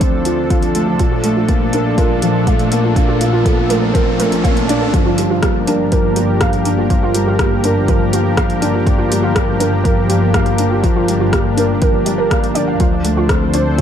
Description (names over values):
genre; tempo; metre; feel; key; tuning
piano and strings electronica; 122 BPM; 4/4; straight; G minor; A4 = 440 Hz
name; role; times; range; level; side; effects
lush unison pad; sustained chords; 0.0-13.8 s; F3 to C5; -21 LUFS; left 1 dB; chorus, sidechain pumping
warbly dusty pluck; arpeggios; 0.0-13.8 s; F4 to F5; -21 LUFS; right 3 dB; ensemble chorus, sidechain pumping, digital delay
felt-muted upright piano; riff; 0.0-13.8 s; F3 to F4; -18 LUFS; left 1 dB; digital delay
dark symphonic double bass section; bass; 0.0-13.8 s; G1 to D2; -20 LUFS; equal; sidechain pumping
deep house drum kit; drums; 0.0-13.8 s; hi-hat, rim click; -23 LUFS; left 1 dB; overdrive, high-pass filter on hats, high-pass filter on snare, high-pass filter on room
electronic kick drum; drums; 0.0-13.8 s; none; -16 LUFS; equal; overdrive
riser; sound effects; 0.5-4.9 s; none; -25 LUFS; right 2 dB; none
room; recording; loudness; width
light reverb; dark, warm production; -12 LUFS; side -9 dB against mid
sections
0.0-4.9 A section; 4.9-13.8 B section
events
build-up 0.0-4.9; filter sweep on synth arpeggio sound 0.0-4.9; riser 0.5-4.9; drop 4.9-13.8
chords
0.0 Dm7; 1.0 Bbmaj7; 4.9 Gm7; 12.8 Dm7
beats
0.01 0.51 | 1.00 1.49 1.98 2.47 | 2.97 3.46 3.95 4.44 | 4.93 5.42 5.92 6.41 | 6.90 7.39 7.88 8.38 | 8.87 9.36 9.85 10.34 | 10.84 11.33 11.82 12.31 | 12.80 13.29 13.79